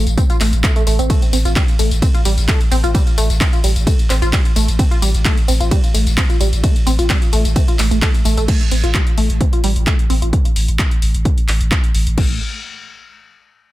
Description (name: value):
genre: driving peak-time techno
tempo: 130 BPM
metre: 4/4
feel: straight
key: A minor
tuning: A4 = 439 Hz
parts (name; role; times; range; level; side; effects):
- tight sequenced synth; riff; 0.0-12.4 s; G3 to A4; -22 LUFS; right 1 dB; chorus, sidechain pumping, tape echo
- saturated sub bass; bass; 0.0-12.4 s; A1; -16 LUFS; equal; tube saturation, sidechain pumping, low-pass filter
- punchy analog drum machine; drums; 0.1-12.3 s; crash cymbal, handclaps, hi-hat, ride cymbal, tambourine; -22 LUFS; equal; sidechain pumping on hats, sidechain pumping on perc, sidechain pumping on cymbals
- electronic kick drum; drums; 0.2-12.3 s; none; -15 LUFS; equal; none
room: little or no reverb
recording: dense, heavily limited modern master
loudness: -13 LUFS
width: side -16 dB against mid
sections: 0.0-8.5 A section; 8.5-12.2 B section; 12.2-13.7 C section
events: drop 0.0-8.5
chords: none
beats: 0.17 0.64 | 1.10 1.56 2.02 2.48 | 2.94 3.41 3.87 4.33 | 4.79 5.25 5.71 6.17 | 6.64 7.10 7.56 8.02 | 8.48 8.94 9.41 9.87 | 10.33 10.79 11.25 11.71 | 12.18